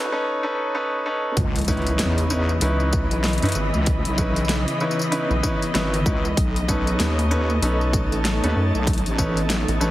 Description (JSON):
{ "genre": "glitch hop", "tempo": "96 BPM", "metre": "4/4", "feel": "swing 60% on 16ths", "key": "C# minor", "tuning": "A4 = 439 Hz", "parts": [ { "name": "clear symphonic string section", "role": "sustained chords", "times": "0.0-9.9 s", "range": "C#3 to D#5", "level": "-29 LUFS", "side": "left 1 dB", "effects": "sidechain pumping" }, { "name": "bright concert grand piano", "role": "stabs", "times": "0.0-9.9 s", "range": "C#4 to B4", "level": "-26 LUFS", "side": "equal", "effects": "vintage 12-bit sampler grit, sidechain pumping, tape echo" }, { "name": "wobble bass", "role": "bass", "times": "0.0-9.9 s", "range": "G#1 to F#2", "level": "-23 LUFS", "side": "equal", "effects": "chorus, high-pass filter" }, { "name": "airy breathy pad", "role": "texture", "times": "0.0-9.9 s", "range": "E3 to B5", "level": "-30 LUFS", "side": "left 1 dB", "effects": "chorus, sidechain pumping" }, { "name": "dubstep drum kit", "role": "drums", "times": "1.4-9.9 s", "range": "hi-hat, rim click, snare drum, tambourine", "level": "-27 LUFS", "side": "left 1 dB", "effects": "high-pass filter on snare, high-pass filter on hats, high-pass filter on perc" }, { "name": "electronic kick drum", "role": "drums", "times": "1.4-9.3 s", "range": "none", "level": "-24 LUFS", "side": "equal", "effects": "none" }, { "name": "impact", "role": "sound effects", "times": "1.4-3.9 s", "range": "none", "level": "-31 LUFS", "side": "equal", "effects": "none" }, { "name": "rubbery square bass", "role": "bass", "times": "2.6-9.8 s", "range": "G#1 to F#2", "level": "-22 LUFS", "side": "equal", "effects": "none" } ], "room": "light reverb", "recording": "heavily compressed radio sound, high-pass filter", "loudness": "-19 LUFS", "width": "side -15 dB against mid", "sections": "0.0-1.4 A section; 1.4-9.9 B section", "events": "build-up 0.0-1.4; drop 1.4-9.9; impact 1.4-3.9", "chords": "0.0 B9; 1.4 C#m9; 6.4 B9" }